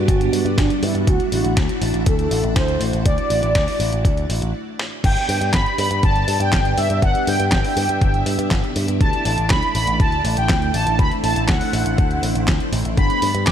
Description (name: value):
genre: italo disco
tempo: 121 BPM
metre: 4/4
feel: straight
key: G major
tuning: A4 = 440 Hz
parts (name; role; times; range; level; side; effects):
- analog synth brass; melody; 0.0-13.5 s; D4 to D6; -22 LUFS; right 1 dB; chorus, cassette tape, ping-pong delay
- string machine, full ensemble; sustained chords; 0.0-13.5 s; G3 to E5; -24 LUFS; equal; phaser, ensemble chorus
- picked electric bass with an envelope filter; bass; 0.0-13.5 s; G1 to G2; -22 LUFS; equal; none
- clean 12-bit digital drum machine; drums; 0.1-13.5 s; crash cymbal, handclaps, hi-hat, snare drum; -25 LUFS; equal; high-pass filter on hats, studio reverb, high-pass filter on snare, high-pass filter on cymbals
- electronic kick drum; drums; 0.1-13.5 s; none; -19 LUFS; equal; overdrive, studio reverb
room: light reverb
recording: dark, warm production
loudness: -16 LUFS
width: side -9 dB against mid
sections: 0.0-5.0 A section; 5.0-13.5 B section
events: filter sweep on analog polysynth 0.0-5.0; break 4.5-5.0; drum fill 4.8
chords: 0.0 Gmaj7; 1.1 Dadd9; 5.0 G; 9.0 Dadd9; 13.0 G